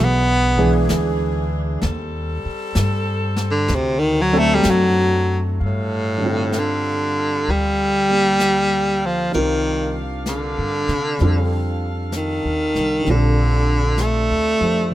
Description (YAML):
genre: jazz ballad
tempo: 64 BPM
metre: 4/4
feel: swing 66% on 8ths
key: G minor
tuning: A4 = 442 Hz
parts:
  - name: clear baritone saxophone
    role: melody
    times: 0.0-14.9 s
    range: A2 to B3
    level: -19 LUFS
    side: equal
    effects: none
  - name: warm saxophone section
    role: sustained chords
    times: 0.0-14.9 s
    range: D3 to F5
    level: -31 LUFS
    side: equal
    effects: none
  - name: upright bass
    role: bass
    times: 0.0-14.9 s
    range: Bb1 to C3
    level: -22 LUFS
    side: equal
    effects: none
  - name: dark concert grand piano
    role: accompaniment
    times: 0.6-14.9 s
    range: D3 to C5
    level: -24 LUFS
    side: right 1 dB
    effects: none
  - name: jazz brush drum kit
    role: drums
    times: 0.6-14.9 s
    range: brushed snare drum, hi-hat, kick drum, snare drum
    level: -29 LUFS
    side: left 1 dB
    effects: none
room: little or no reverb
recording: close, detailed microphones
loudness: -17 LUFS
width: side -14 dB against mid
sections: 0.0-5.6 A section; 5.6-14.9 B section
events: baritone saxophone solo 0.0-5.6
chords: 0.0 E7; 1.8 Am7b5; 3.7 D7; 5.6 Gm9; 9.3 C9sus4; 11.2 F7; 13.1 Bbmaj9